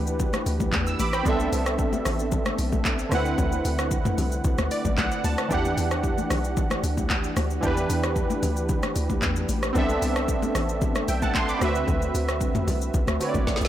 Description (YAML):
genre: amapiano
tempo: 113 BPM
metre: 4/4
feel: straight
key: E minor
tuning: A4 = 440 Hz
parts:
  - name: warm analog keys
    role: accompaniment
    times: 0.0-13.7 s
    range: D3 to E6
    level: -26 LUFS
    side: right 2 dB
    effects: chorus
  - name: hollow log drum bass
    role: bass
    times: 0.0-13.7 s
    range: A1 to E2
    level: -28 LUFS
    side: equal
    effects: none
  - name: deep house drum kit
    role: drums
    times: 0.1-13.7 s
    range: handclaps, hi-hat, kick drum, rim click, shaker, snare drum, toms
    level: -27 LUFS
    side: equal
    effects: none
  - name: congas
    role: percussion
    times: 0.2-13.6 s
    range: none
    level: -33 LUFS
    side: left 6 dB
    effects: none
room: little or no reverb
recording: blown-out, overdriven recording, overdrive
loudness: -22 LUFS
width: side -12 dB against mid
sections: 0.0-13.7 A section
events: synth keys fill 4.4-5.5; drum fill 13.5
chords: 0.0 Em9; 1.3 Cmaj13; 3.1 D13; 5.5 Em9; 9.8 Cmaj13; 11.6 D13